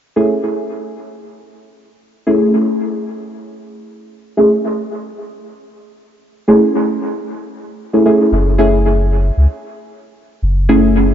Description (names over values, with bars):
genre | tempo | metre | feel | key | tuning
dub techno | free time | none | none | unclear | A4 = 440 Hz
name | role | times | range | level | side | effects
deep mellow chord stab | stabs | 0.2-11.1 s | A3 to G#4 | -14 LUFS | equal | chorus, phaser, dub echo
warm sub bass | bass | 8.3-11.1 s | F#1 to C#2 | -13 LUFS | equal | none
room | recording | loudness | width
moderate lush hall reverb, RT60 2.8 s | nothing above 7.6 kHz | -12 LUFS | side -9 dB against mid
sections
0.0-8.3 A section; 8.3-11.1 B section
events
filter sweep on synth stab 0.0-8.3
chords
0.0 Amaj7; 8.3 F#m7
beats
free time